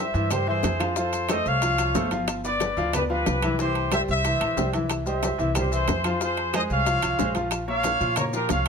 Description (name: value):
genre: latin, salsa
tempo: 183 BPM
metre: 4/4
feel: straight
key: F minor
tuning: A4 = 440 Hz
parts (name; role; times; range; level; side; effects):
- mellow trumpet section; melody; 0.0-8.7 s; G4 to F5; -26 LUFS; equal; none
- bright upright piano; accompaniment; 0.0-8.7 s; E3 to F5; -28 LUFS; left 1 dB; none
- upright bass; bass; 0.1-8.7 s; G1 to Bb2; -28 LUFS; right 1 dB; none
- bongos; percussion; 0.1-8.7 s; none; -33 LUFS; left 11 dB; none
- congas; percussion; 0.1-8.7 s; none; -33 LUFS; left 1 dB; none
- maracas; percussion; 0.1-8.7 s; none; -38 LUFS; left 7 dB; none
- claves; percussion; 0.3-8.7 s; none; -38 LUFS; left 2 dB; none
- timbales; percussion; 0.3-8.7 s; none; -32 LUFS; right 11 dB; none
room: little or no reverb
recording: close, detailed microphones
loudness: -22 LUFS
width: side -6 dB against mid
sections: 0.0-8.7 A section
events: none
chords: 0.0 C; 1.0 F; 2.3 G7; 3.6 C; 6.2 Fm; 7.5 Bbm